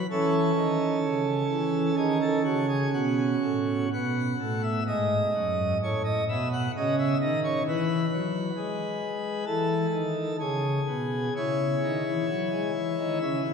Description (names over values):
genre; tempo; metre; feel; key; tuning
classical, chorale-style piece for pipe organ; 64 BPM; 4/4; rubato; E major; A4 = 440 Hz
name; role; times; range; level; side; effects
pipe organ, plenum; solo; 0.0-13.5 s; F#2 to F#5; -24 LUFS; equal; none
room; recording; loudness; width
wet church reverb, RT60 3.1 s; minimal, uncompressed stereo recording; -24 LUFS; side -6 dB against mid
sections
0.0-13.5 A section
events
none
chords
0.1 F#m7; 3.9 B7; 7.7 E; 11.4 C#m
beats
| 0.11 1.05 1.99 2.94 | 3.92 4.87 5.80 6.74 | 7.65 8.55 9.47 10.39 | 11.36 12.29 13.22